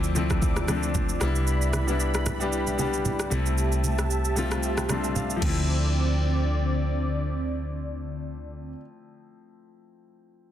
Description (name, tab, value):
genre	amapiano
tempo	114 BPM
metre	4/4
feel	swing 55% on 16ths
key	D dorian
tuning	A4 = 440 Hz
part	clear concert grand piano	accompaniment	0.0-10.5 s	F3 to C6	-30 LUFS	left 4 dB	none
part	warm analog pad	sustained chords	0.0-8.7 s	D3 to D6	-32 LUFS	right 1 dB	chorus
part	hollow-body short-scale fingered electric bass	bass	0.0-8.7 s	C2 to D2	-27 LUFS	right 1 dB	none
part	afro-pop drum kit	drums	0.0-5.6 s	crash cymbal, kick drum, rim click, shaker	-30 LUFS	right 1 dB	soft clipping on snare
part	congas	percussion	0.2-5.9 s	none	-34 LUFS	right 3 dB	none
room	little or no reverb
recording	dense, heavily limited modern master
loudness	-23 LUFS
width	side -11 dB against mid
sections	0.0-5.7 A section; 5.7-9.9 B section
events	grand piano fill 4.6-5.7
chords	0.0 Dm7; 1.2 Cmaj9; 3.3 Fmaj9/C; 5.4 Dm7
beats	0.42 0.95 | 1.47 2.00 2.53 3.05 | 3.58 4.11 4.63 5.16 | 5.68 6.21 6.74 7.26 | 7.79 8.32 8.84 9.37